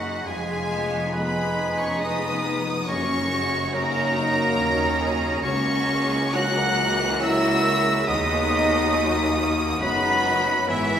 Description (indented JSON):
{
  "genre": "classical, slow romantic movement for symphony orchestra",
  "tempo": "69 BPM",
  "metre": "3/4",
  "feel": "rubato",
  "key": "F# major, B major from 5.4 s",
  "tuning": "A4 = 439 Hz",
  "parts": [
    { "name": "clear studio violin section", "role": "melody", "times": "0.0-11.0 s", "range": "E5 to F#6", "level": "-27 LUFS", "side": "equal", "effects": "none" },
    { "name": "clear oboe", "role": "second line", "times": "0.0-11.0 s", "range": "E4 to F#5", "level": "-29 LUFS", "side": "right 1 dB", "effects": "none" },
    { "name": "concert flute", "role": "second line", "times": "0.0-11.0 s", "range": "A#6 to B6", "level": "-29 LUFS", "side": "left 1 dB", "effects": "none" },
    { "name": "rich studio violin section", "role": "second line", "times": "0.0-11.0 s", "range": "C#4 to B4", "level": "-31 LUFS", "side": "left 1 dB", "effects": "none" },
    { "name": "dark bassoon", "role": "accompaniment", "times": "0.0-11.0 s", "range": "E3 to G#3", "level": "-31 LUFS", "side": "equal", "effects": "none" },
    { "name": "rich studio viola section", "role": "accompaniment", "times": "0.0-11.0 s", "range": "E3 to D#4", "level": "-32 LUFS", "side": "right 2 dB", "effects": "none" },
    { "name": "dark French horn section", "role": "sustained chords", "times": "0.0-11.0 s", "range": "E3 to F#4", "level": "-27 LUFS", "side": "left 2 dB", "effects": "none" },
    { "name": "concert harp", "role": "arpeggios", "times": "0.0-11.0 s", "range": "E#2 to B4", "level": "-35 LUFS", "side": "left 3 dB", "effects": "none" },
    { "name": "rich studio cello section", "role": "bass", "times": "0.0-11.0 s", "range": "C#2 to G#2", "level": "-31 LUFS", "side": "right 2 dB", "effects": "none" },
    { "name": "rich studio double bass section", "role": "bass", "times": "0.0-11.0 s", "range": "E#1 to D#2", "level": "-33 LUFS", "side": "right 2 dB", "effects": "none" },
    { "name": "timpani", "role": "percussion", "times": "2.9-4.1 s", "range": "F#2", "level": "-41 LUFS", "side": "equal", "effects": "none" }
  ],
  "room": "wet recital hall reverb, RT60 1.5 s",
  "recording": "recorded in a church or concert hall",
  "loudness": "-20 LUFS",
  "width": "side -9 dB against mid",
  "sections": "0.0-11.0 A section",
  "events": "none",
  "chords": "0.3 C#7/E#; 2.9 F#; 5.4 F#7/C#; 8.1 B/D#",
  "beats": "| 0.27 1.14 2.02 | 2.88 3.74 4.58 | 5.43 6.34 7.22 | 8.07 8.93 9.81 | 10.69"
}